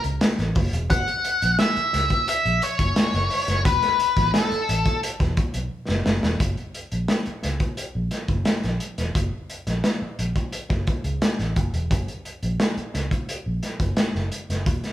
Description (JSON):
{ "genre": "funk", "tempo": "87 BPM", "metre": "4/4", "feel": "straight", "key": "F# mixolydian", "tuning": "A4 = 440 Hz", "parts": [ { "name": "vintage muted fingered electric bass", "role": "bass", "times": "0.0-14.8 s", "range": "E1 to C#2", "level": "-27 LUFS", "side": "equal", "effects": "none" }, { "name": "crunchy breakbeat drum kit", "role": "drums", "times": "0.0-14.9 s", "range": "hi-hat, kick drum, snare drum", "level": "-24 LUFS", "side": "equal", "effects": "none" }, { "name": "octave-fuzz lead guitar", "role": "melody", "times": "0.9-5.0 s", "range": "A4 to F#5", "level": "-22 LUFS", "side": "left 2 dB", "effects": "distortion" } ], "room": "moderate large studio reverb, RT60 1.3 s", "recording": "band playing live in one room", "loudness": "-21 LUFS", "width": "side -12 dB against mid", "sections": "0.0-6.4 A section; 6.4-14.9 B section", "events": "drum fill 5.7-6.4", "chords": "0.0 F#7; 3.6 Esus24; 6.4 F#" }